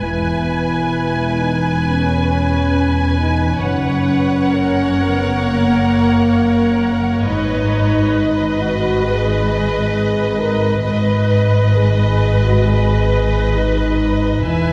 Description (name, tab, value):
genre	cinematic, epic orchestral film score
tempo	67 BPM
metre	4/4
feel	straight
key	G# minor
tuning	A4 = 442 Hz
part	rich symphonic violin section	melody	0.0-14.7 s	D#5 to G#5	-28 LUFS	equal	none
part	rich symphonic violin section	second line	0.0-14.7 s	B4 to G#5	-29 LUFS	equal	none
part	rich symphonic viola section	accompaniment	0.0-14.7 s	A#4 to B4	-27 LUFS	equal	none
part	mellow French horn section	sustained chords	0.0-14.7 s	A#3 to B4	-21 LUFS	equal	none
part	clear symphonic double bass section	bass	0.0-14.7 s	E1 to G#1	-22 LUFS	equal	none
part	rich symphonic cello section	bass	0.0-14.7 s	E2 to G#2	-23 LUFS	equal	none
room	wet scoring stage reverb, RT60 1.9 s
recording	heard from further back in the room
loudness	-16 LUFS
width	mono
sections	0.0-14.7 A section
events	none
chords	0.0 E; 3.6 F#; 7.3 G#m